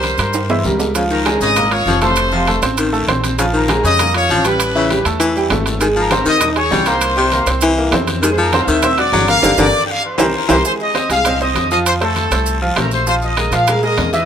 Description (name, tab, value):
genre	latin, salsa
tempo	198 BPM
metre	4/4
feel	straight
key	F minor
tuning	A4 = 440 Hz
part	bright trumpet section	melody	0.0-14.3 s	A4 to E6	-17 LUFS	left 2 dB	none
part	bright baby grand piano	accompaniment	0.0-14.3 s	E3 to Ab6	-18 LUFS	right 2 dB	none
part	upright bass	bass	0.0-14.3 s	F1 to Bb2	-21 LUFS	equal	none
part	congas	percussion	0.0-14.3 s	none	-26 LUFS	left 3 dB	none
part	guiro	percussion	0.0-14.3 s	none	-29 LUFS	left 4 dB	none
part	maracas	percussion	0.0-14.3 s	none	-27 LUFS	right 7 dB	none
part	timbales	percussion	0.0-14.1 s	none	-22 LUFS	right 5 dB	none
part	bright baritone saxophone	second line	1.0-10.6 s	C3 to G3	-19 LUFS	left 3 dB	none
room	moderate plate reverb, RT60 2.3 s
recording	none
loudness	-12 LUFS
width	side -8 dB against mid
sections	1.0-10.6 A section; 10.6-14.3 B section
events	drum fill 0.3-1.0, 10.0-10.6; band accent 9.4-10.6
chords	0.0 C7; 1.0 Db69; 2.2 F7; 3.4 Bbm7; 4.6 A7(no3); 5.8 Ab; 7.0 C7; 8.2 Fm7; 8.8 D7; 9.4 Gm7; 10.0 C7; 10.6 Fm7; 11.9 F; 13.1 Bb5